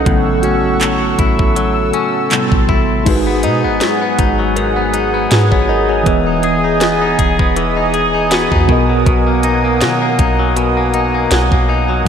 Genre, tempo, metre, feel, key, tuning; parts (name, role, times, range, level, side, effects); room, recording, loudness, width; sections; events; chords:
contemporary R&B; 80 BPM; 4/4; swing 54% on 16ths; B major; A4 = 440 Hz
mellow tine electric piano; accompaniment; 0.0-12.1 s; A2 to F#5; -18 LUFS; right 1 dB; medium stereo tremolo
warm analog pad; sustained chords; 0.0-12.1 s; G#4 to E6; -18 LUFS; right 2 dB; chorus
direct-recorded clean electric guitar; arpeggios; 0.0-12.1 s; G#2 to G#4; -18 LUFS; left 6 dB; tape echo
soft 808-style bass; bass; 0.0-12.0 s; E1 to D#3; -19 LUFS; equal
trap drum kit; drums; 0.1-11.7 s; crash cymbal, handclaps, hi-hat, kick drum, snare drum; -17 LUFS; equal
glassy synth bell; texture; 3.4-9.0 s; F#4 to D#5; -26 LUFS; right 3 dB; chorus, tape echo
moderate lush hall reverb, RT60 2.6 s; dreamy mix soaked in reverb; -11 LUFS; side -8 dB against mid
0.0-3.1 A section; 3.1-12.1 B section
tine electric piano solo 0.0-3.1
0.1 A6; 2.3 Am7; 3.1 G#m7; 6.1 Emaj7; 8.7 Bmaj7